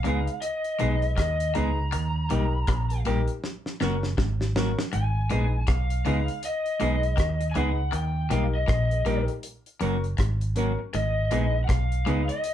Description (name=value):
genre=roots reggae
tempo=80 BPM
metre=4/4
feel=swing 60% on 16ths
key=G# dorian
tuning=A4 = 443 Hz
part: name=lead guitar through a small cranked amp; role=melody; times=0.0-12.5 s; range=D#5 to A#5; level=-30 LUFS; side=left 1 dB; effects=overdrive
part: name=semi-hollow electric guitar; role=accompaniment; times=0.0-12.2 s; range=F#3 to G#4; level=-31 LUFS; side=right 2 dB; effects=none
part: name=twangy electric guitar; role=riff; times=0.0-12.2 s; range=F#2 to D#3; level=-34 LUFS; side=left 4 dB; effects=spring reverb
part: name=vintage muted fingered electric bass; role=bass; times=0.0-12.3 s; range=F#1 to D#2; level=-26 LUFS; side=equal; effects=none
part: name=dark grand piano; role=stabs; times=0.1-12.3 s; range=C#4 to B4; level=-33 LUFS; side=left 3 dB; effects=none
part: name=damped 70s drum kit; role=drums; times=0.1-12.5 s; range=hi-hat, kick drum, rim click, snare drum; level=-29 LUFS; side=equal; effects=vintage 12-bit sampler grit
room=wet small room reverb, RT60 0.5 s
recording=band playing live in one room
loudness=-23 LUFS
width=side -11 dB against mid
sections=0.0-12.5 A section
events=drum fill 3.4-4.9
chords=0.0 G#m; 1.9 D#; 3.4 F#; 4.9 G#m; 7.9 D#; 9.4 F#; 10.9 G#m